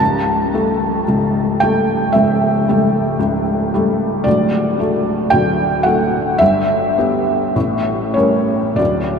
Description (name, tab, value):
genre	classical, romantic nocturne for solo piano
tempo	46-57 BPM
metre	4/4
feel	rubato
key	unclear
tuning	A4 = 442 Hz
part	felt-muted upright piano	solo	0.0-9.2 s	C#1 to A5	-14 LUFS	equal	none
room	wet huge ambient reverb, RT60 8.0 s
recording	in a vast, echoing space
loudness	-14 LUFS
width	side -6 dB against mid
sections	0.0-9.2 A section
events	none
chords	0.0 A7/C#; 4.3 D; 6.4 Em/G; 7.5 A7b9